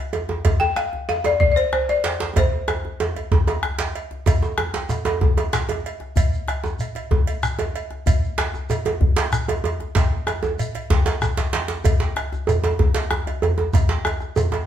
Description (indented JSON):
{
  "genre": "west african traditional, West African drum ensemble",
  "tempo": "126 BPM (dotted quarters)",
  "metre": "12/8",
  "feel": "straight",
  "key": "unclear",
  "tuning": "A4 = 440 Hz",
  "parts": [
    { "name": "balafon", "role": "melody", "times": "0.0-2.7 s", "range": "C5 to G5", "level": "-20 LUFS", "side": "left 3 dB", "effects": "none" },
    { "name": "cowbell", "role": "percussion", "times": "0.1-14.7 s", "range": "none", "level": "-32 LUFS", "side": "right 7 dB", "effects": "none" },
    { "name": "djembe", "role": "percussion", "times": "0.1-14.7 s", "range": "none", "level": "-24 LUFS", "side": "left 3 dB", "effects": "none" },
    { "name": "djembe", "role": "percussion", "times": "0.1-14.7 s", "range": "none", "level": "-24 LUFS", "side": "right 3 dB", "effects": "none" },
    { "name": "bombo", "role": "percussion", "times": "0.3-14.3 s", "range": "none", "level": "-22 LUFS", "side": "right 1 dB", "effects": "none" },
    { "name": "shekere", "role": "percussion", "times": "4.3-14.5 s", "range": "none", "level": "-28 LUFS", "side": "equal", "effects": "none" }
  ],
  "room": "wet studio reverb, RT60 0.9 s",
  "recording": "band playing live in one room",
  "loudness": "-19 LUFS",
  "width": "side -10 dB against mid",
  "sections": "0.0-4.3 A section; 4.3-14.7 B section",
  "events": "drum fill 2.4-4.3, 11.2-11.8",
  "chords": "none",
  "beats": "| 0.45 0.93 1.41 1.88 | 2.36 2.84 3.31 3.79 | 4.26 4.74 5.21 5.69 | 6.17 6.64 7.11 7.59 | 8.06 8.54 9.01 9.48 | 9.96 10.43 10.90 11.38 | 11.85 12.32 12.79 13.27 | 13.74 14.21"
}